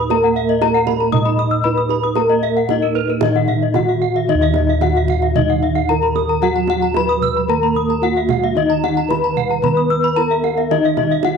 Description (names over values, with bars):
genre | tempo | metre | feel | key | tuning
Balinese gamelan | 112 BPM | 4/4 | straight | Eb pelog | A4 = 440 Hz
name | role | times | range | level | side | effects
gamelan-type bronze metallophone | melody | 0.0-11.4 s | Eb4 to Eb5 | -19 LUFS | left 2 dB | none
gamelan-type bronze metallophone | accompaniment | 0.0-11.4 s | Eb3 to Eb4 | -24 LUFS | right 12 dB | none
gamelan-type bronze metallophone | arpeggios | 0.0-11.4 s | Bb4-30c to Fb6+20c | -20 LUFS | left 10 dB | none
gamelan-type bossed gongs | bass | 0.0-11.4 s | Eb2 to Bb4-30c | -21 LUFS | equal | none
kendang | percussion | 0.1-11.4 s | none | -25 LUFS | right 11 dB | none
gamelan-type bronze metallophone | arpeggios | 0.4-11.2 s | Bb4-30c to Fb6+20c | -25 LUFS | right 13 dB | none
room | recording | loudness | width
moderate spring reverb, RT60 1.3 s, small room ambience | 1960s-style stereo with parts hard left and right | -14 LUFS | side -6 dB against mid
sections
0.0-4.3 A section; 4.3-11.4 B section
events
none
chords
none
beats
| 0.11 0.62 1.13 1.65 | 2.17 2.69 3.22 3.75 | 4.28 4.82 5.35 5.89 | 6.42 6.96 7.50 8.03 | 8.57 9.10 9.64 10.17 | 10.71 11.24